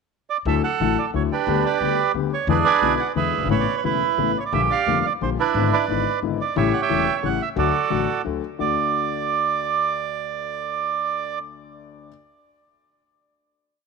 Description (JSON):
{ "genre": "tango", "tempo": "177 BPM", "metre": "3/4", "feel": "rubato", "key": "D major", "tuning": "A4 = 442 Hz", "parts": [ { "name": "bandoneon", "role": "melody", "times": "0.3-11.4 s", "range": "D4 to G#5", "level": "-21 LUFS", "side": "right 9 dB", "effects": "none" }, { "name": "warm grand piano", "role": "accompaniment", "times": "0.5-12.1 s", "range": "E1 to G4", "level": "-25 LUFS", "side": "left 13 dB", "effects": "none" }, { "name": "upright bass", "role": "bass", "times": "0.5-8.7 s", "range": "E1 to E2", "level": "-28 LUFS", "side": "left 1 dB", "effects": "none" } ], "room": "light reverb, studio ambience", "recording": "1960s-style stereo with parts hard left and right", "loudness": "-19 LUFS", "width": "side -4 dB against mid", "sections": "0.0-0.5 pickup bar; 0.5-8.6 A section; 8.6-10.6 final chord", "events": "none", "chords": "0.5 Dadd9; 1.5 G/D; 2.5 E7; 3.5 Aadd9; 4.5 Bb6; 5.5 E7/G#; 6.6 A7; 7.6 D", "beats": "0.12 | 0.46 0.80 1.14 | 1.48 1.81 2.15 | 2.48 2.82 3.16 | 3.50 3.84 4.18 | 4.53 4.87 5.21 | 5.55 5.88 6.22 | 6.56 6.90 7.23 | 7.57 7.91 8.25 | 8.59 8.93 9.27 | 9.61 9.95 10.28" }